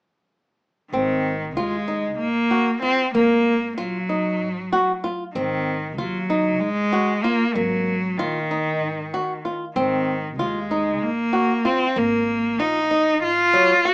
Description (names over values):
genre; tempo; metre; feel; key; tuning
contemporary instrumental, chamber music in an uneven meter; 190 BPM (eighths); 7/8; straight; Ab mixolydian; A4 = 440 Hz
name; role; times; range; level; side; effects
clear cello; melody; 0.9-13.9 s; Eb3 to Gb4; -21 LUFS; equal; none
flamenco guitar; arpeggios; 0.9-13.9 s; Gb3 to F5; -22 LUFS; equal; none
upright bass; bass; 0.9-13.5 s; Ab1 to Eb2; -35 LUFS; equal; none
room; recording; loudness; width
light reverb; small speaker sound; -19 LUFS; side -26 dB against mid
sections
0.9-13.9 A section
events
none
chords
0.9 Abadd9; 3.1 Ebm/Ab; 5.3 Ab; 7.6 Ebm/Ab; 9.8 Abadd9; 12.0 Eb5/Ab